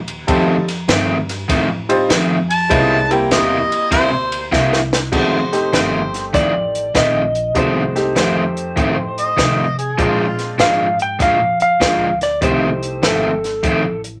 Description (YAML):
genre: electric blues shuffle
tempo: 99 BPM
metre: 4/4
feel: swing 66% on 8ths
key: F mixolydian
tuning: A4 = 440 Hz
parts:
  - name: upright bass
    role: bass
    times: 0.0-14.2 s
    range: F1 to C3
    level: -28 LUFS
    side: equal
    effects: none
  - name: compact cocktail drum kit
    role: drums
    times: 0.1-14.1 s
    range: crash cymbal, hi-hat, kick drum, ride cymbal, snare drum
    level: -23 LUFS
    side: equal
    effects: none
  - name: bright upright piano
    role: accompaniment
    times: 0.3-13.4 s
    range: G3 to C5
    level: -23 LUFS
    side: equal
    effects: none
  - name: overdriven semi-hollow guitar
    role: riff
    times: 0.3-13.9 s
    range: F2 to E4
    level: -21 LUFS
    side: equal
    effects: none
  - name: warm harmonica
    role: second line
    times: 2.5-10.5 s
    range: F4 to A5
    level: -22 LUFS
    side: equal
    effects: overdrive
  - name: clean lap steel guitar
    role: melody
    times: 6.3-14.0 s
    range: A4 to G5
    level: -20 LUFS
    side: equal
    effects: none
room: wet small room ambience, RT60 0.5 s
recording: none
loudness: -16 LUFS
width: mono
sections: 0.0-5.1 A section; 5.1-14.2 B section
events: harmonica solo 0.0-5.1; drum fill 4.5-5.1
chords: 0.3 F7; 2.7 C7; 5.1 F7; 10.0 Bb7; 12.4 F7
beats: | 0.28 0.89 1.50 2.10 | 2.71 3.31 3.92 4.52 | 5.13 5.73 6.34 6.95 | 7.55 8.16 8.77 9.38 | 9.98 10.59 11.20 11.81 | 12.42 13.03 13.64